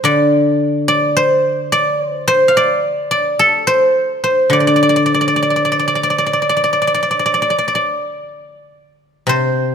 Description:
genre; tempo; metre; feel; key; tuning
chinese traditional, Chinese solo plucked strings; 48-55 BPM; 4/4; rubato; D yu mode; A4 = 440 Hz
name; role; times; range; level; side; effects
guzheng; solo; 0.0-9.7 s; C3 to F5; -12 LUFS; equal; none
room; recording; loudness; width
moderate scoring stage reverb, RT60 1.9 s; close, detailed microphones; -12 LUFS; side -7 dB against mid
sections
0.0-9.3 A section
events
none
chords
none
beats
| 0.06 1.16 2.27 3.39 | 4.53 5.69 6.86 8.07 | 9.28

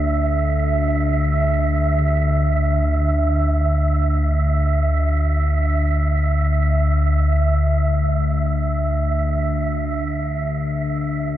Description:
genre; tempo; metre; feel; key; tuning
dark ambient drone; free time; none; none; unclear; A4 = 440 Hz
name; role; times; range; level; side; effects
analog drone; drone; 0.0-11.4 s; D2 to D3; -18 LUFS; left 1 dB; chorus
wind-like tuned noise texture; texture; 0.0-11.4 s; E5; -24 LUFS; right 4 dB; built-in reverb
gamelan-type bronze metallophone; arpeggios; 2.0-4.4 s; D3; -34 LUFS; left 6 dB; none
room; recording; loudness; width
moderate plate reverb, RT60 2.4 s; echo-heavy mix; -17 LUFS; side -12 dB against mid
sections
0.0-11.4 A section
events
filter sweep on synth drone 0.0-11.4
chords
0.0 Dsus2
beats
free time

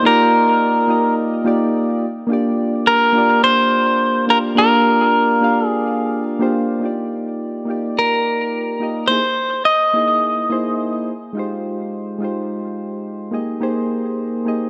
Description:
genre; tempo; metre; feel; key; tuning
chillout; 106 BPM; 4/4; straight; C minor; A4 = 441 Hz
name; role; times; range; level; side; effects
clean electric guitar; melody; 0.0-11.0 s; Bb4 to D#5; -18 LUFS; equal; vintage 12-bit sampler grit, digital delay
soft electric-piano-like synth keys; accompaniment; 0.0-14.7 s; Ab3 to F5; -21 LUFS; equal; chorus, digital delay
room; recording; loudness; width
moderate lush hall reverb, RT60 2.3 s; none; -18 LUFS; mono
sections
0.0-6.8 A section; 6.8-14.7 B section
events
none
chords
0.0 Cm11 (rootless); 2.0 Gm7; 6.8 Ebmaj7; 9.1 C7alt; 11.1 Fm9; 13.3 Abmaj9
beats
| 0.04 0.60 1.17 1.73 | 2.30 2.87 3.43 4.00 | 4.56 5.13 5.70 6.26 | 6.83 7.39 7.96 8.53 | 9.09 9.66 10.22 10.79 | 11.36 11.92 12.49 13.05 | 13.62 14.19

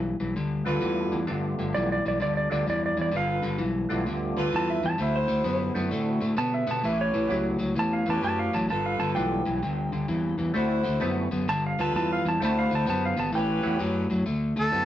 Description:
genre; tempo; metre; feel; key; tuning
electric blues shuffle; 129 BPM; 4/4; swing 65% on 8ths; D mixolydian; A4 = 441 Hz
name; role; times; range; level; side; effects
electric guitar at the edge of break-up; riff; 0.0-14.8 s; G2 to B3; -28 LUFS; left 2 dB; none
fingered electric bass; bass; 0.0-14.8 s; G1 to B2; -32 LUFS; right 1 dB; none
percussive tonewheel organ; accompaniment; 0.6-14.8 s; A3 to G4; -32 LUFS; right 2 dB; slow rotary speaker, overdrive
warm saxophone section; stabs; 0.7-14.1 s; C#4 to C5; -31 LUFS; equal; none
clean lap steel guitar; second line; 1.7-13.8 s; C5 to A5; -28 LUFS; right 2 dB; none
overdriven harmonica; melody; 14.6-14.8 s; A4; -23 LUFS; equal; none
room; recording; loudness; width
moderate small room reverb, RT60 0.5 s; rough rehearsal-room recording, nothing above 7.9 kHz; -24 LUFS; side -12 dB against mid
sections
0.0-14.3 A section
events
electric slide guitar solo 0.0-14.3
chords
0.0 G9; 5.0 D9; 6.8 A9; 8.7 G9; 10.6 D9; 11.5 G9; 12.4 D9; 13.3 A9; 14.3 D9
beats
0.35 0.81 | 1.27 1.74 2.20 2.67 | 3.13 3.59 4.06 4.52 | 4.99 5.45 5.91 6.38 | 6.84 7.30 7.77 8.23 | 8.70 9.16 9.62 10.09 | 10.55 11.01 11.48 11.94 | 12.40 12.87 13.33 13.80 | 14.26 14.72

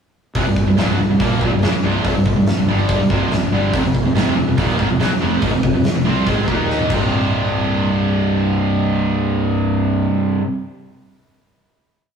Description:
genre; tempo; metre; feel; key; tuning
hard rock; 142 BPM; 4/4; straight; C minor; A4 = 440 Hz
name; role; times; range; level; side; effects
distorted electric guitar; riff; 0.3-10.4 s; C2 to Eb4; -27 LUFS; equal; none
huge arena drum kit; drums; 0.3-7.0 s; crash cymbal, hi-hat, kick drum, snare drum, toms; -20 LUFS; equal; none
cranked stack guitar; riff; 0.4-10.4 s; C2 to Eb4; -21 LUFS; left 3 dB; overdrive
distorted electric guitar; riff; 0.4-10.4 s; C2 to Eb4; -21 LUFS; right 5 dB; overdrive
fuzz fingered electric bass; bass; 0.4-10.1 s; C1 to Eb2; -22 LUFS; equal; overdrive
room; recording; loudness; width
wet stone room reverb, RT60 1.3 s; rough rehearsal-room recording, tube saturation, small room ambience; -15 LUFS; side -7 dB against mid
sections
0.4-7.1 riff; 7.1-10.5 final hit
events
drum fill 6.7-7.1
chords
0.4 Cm; 3.7 F5; 6.5 Eb5; 6.9 C5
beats
| 0.36 0.78 1.21 1.63 | 2.05 2.48 2.90 3.32 | 3.74 4.16 4.58 5.01 | 5.43 5.85 6.27 6.69 | 7.12 7.54 7.96 8.39 | 8.81 9.24 9.66 10.09

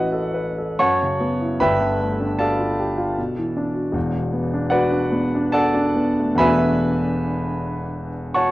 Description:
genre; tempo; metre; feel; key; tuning
classical, impressionist solo piano; 64-78 BPM; 3/4; rubato; unclear; A4 = 440 Hz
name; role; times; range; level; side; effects
warm grand piano; solo; 0.0-8.5 s; E1 to C#6; -18 LUFS; equal; none
room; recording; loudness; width
moderate recital hall reverb, RT60 1.5 s; worn, warbling old tape, cassette tape, warbly pitch drift; -18 LUFS; side -17 dB against mid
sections
0.0-8.5 A section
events
none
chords
0.0 A69; 0.8 F#m7; 1.6 G9; 3.2 Bm7; 4.0 E11; 6.4 E9sus4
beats
0.78 | 1.60 2.39 3.18 | 3.95 4.73 5.54 | 6.39 7.26 8.13

